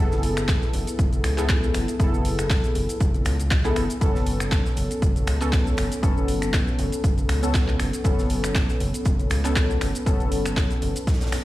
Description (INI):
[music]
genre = deep house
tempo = 119 BPM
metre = 4/4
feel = swing 55% on 16ths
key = unclear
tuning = A4 = 441 Hz
[part]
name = warm analog keys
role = stabs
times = 0.0-11.4 s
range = B3 to A4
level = -27 LUFS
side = left 1 dB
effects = chorus, sidechain pumping, ping-pong delay
[part]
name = rubbery square bass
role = bass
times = 0.0-10.9 s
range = F#1 to C#2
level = -26 LUFS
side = equal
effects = sidechain pumping
[part]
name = deep house drum kit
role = drums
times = 0.1-11.4 s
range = finger snaps, handclaps, hi-hat, shaker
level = -30 LUFS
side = equal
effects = studio reverb
[part]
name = gated 80s drum kit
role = drums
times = 0.1-11.4 s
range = hi-hat, snare drum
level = -39 LUFS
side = right 2 dB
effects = high-pass filter on hats, studio reverb, high-pass filter on snare, high-pass filter on room
[part]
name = electronic kick drum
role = drums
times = 0.5-11.2 s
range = none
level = -23 LUFS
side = equal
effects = studio reverb
[sound]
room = small room ambience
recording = played on a big sound system in a bare room, large studio reverb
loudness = -20 LUFS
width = side -16 dB against mid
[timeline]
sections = 0.0-11.4 A section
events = none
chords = 0.0 F#m11; 4.0 Aadd9/F#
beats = 0.48 0.99 1.49 | 2.00 2.50 3.00 3.51 | 4.01 4.52 5.02 5.53 | 6.03 6.54 7.04 7.54 | 8.05 8.55 9.06 9.56 | 10.06 10.57 11.07